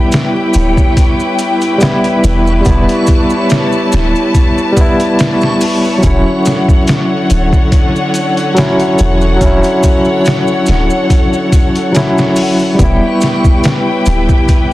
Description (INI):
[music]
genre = trip hop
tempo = 71 BPM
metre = 4/4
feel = swing 54% on 16ths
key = E dorian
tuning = A4 = 442 Hz
[part]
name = barky tine electric piano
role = accompaniment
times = 0.0-14.7 s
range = F#3 to E4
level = -13 LUFS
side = equal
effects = tremolo, vintage 12-bit sampler grit, tape echo
[part]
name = rich studio string section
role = sustained chords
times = 0.0-14.7 s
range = D3 to A5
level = -17 LUFS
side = left 1 dB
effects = none
[part]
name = backwards swelling texture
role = texture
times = 0.0-14.7 s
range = C#5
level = -25 LUFS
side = right 1 dB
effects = built-in reverb
[part]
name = trip hop sampler-style drum kit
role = drums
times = 0.1-14.7 s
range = hi-hat, kick drum, snare drum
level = -12 LUFS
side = equal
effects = vintage 12-bit sampler grit
[part]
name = maracas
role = percussion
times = 0.1-14.7 s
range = none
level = -29 LUFS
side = right 3 dB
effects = none
[part]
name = soft 808-style bass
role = bass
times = 0.5-14.3 s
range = D1 to E1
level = -12 LUFS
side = equal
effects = none
[sound]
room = light reverb, digital ambience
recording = dense, heavily limited modern master, vinyl crackle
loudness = -9 LUFS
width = side -16 dB against mid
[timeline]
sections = 0.0-14.7 A section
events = none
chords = 0.0 Em; 6.0 Dmaj7; 12.8 Em